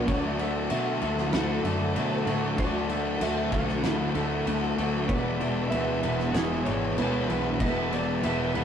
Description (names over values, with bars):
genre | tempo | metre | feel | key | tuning
rock, shoegaze and dream pop | 96 BPM | 4/4 | straight | D lydian | A4 = 439 Hz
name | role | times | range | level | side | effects
string machine, violins | sustained chords | 0.0-8.6 s | A4 to G#5 | -38 LUFS | equal | ensemble chorus
twelve-string electric guitar | arpeggios | 0.0-8.6 s | F#3 to G#4 | -34 LUFS | right 3 dB | none
overdriven electric guitar | riff | 0.0-8.6 s | D3 to G#4 | -33 LUFS | right 4 dB | none
thick fuzz guitar | riff | 0.0-8.6 s | E2 to D4 | -29 LUFS | left 2 dB | distortion
vintage muted fingered electric bass | bass | 0.0-8.6 s | E1 to B2 | -36 LUFS | right 1 dB | none
lightly driven lead guitar | melody | 0.1-8.6 s | C#5 to F#5 | -35 LUFS | right 1 dB | none
loose indie drum kit | drums | 0.1-8.6 s | crash cymbal, kick drum, snare drum | -31 LUFS | equal | none
room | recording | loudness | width
wet booth ambience, RT60 0.3 s | rough rehearsal-room recording, warm saturation | -24 LUFS | side -8 dB against mid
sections
0.0-8.6 A section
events
none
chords
0.1 Dadd9; 5.1 E7